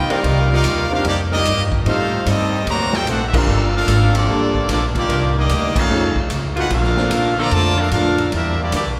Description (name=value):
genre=jazz, big band swing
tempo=148 BPM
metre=4/4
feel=swing 66% on 8ths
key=Bb major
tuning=A4 = 442 Hz
part: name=brilliant trumpet section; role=melody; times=0.0-8.9 s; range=Bb3 to Bb5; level=-23 LUFS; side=equal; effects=none
part: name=clear trombone section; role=second line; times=0.0-8.8 s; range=C3 to G4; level=-25 LUFS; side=equal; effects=none
part: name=upright bass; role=bass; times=0.0-9.0 s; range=G1 to Bb2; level=-22 LUFS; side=equal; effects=none
part: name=warm baby grand piano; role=accompaniment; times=0.1-7.1 s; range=F3 to D5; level=-29 LUFS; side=equal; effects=none
part: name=bright saxophone section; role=sustained chords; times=0.1-7.5 s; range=Eb3 to A#4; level=-33 LUFS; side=equal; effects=none
part: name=swinging big-band drum kit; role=drums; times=0.1-8.8 s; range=crash cymbal, hi-hat, kick drum, ride cymbal, snare drum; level=-27 LUFS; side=equal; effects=none
room=wet cathedral reverb, RT60 6.5 s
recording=recorded in a church or concert hall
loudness=-17 LUFS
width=mono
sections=0.0-9.0 A section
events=band accent 3.3, 5.7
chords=0.2 Cm9; 1.9 Am7b5; 2.7 D7b13; 3.5 Gm9; 5.1 Cm9; 5.9 F7alt; 6.7 Bbmaj7; 8.3 Em7b5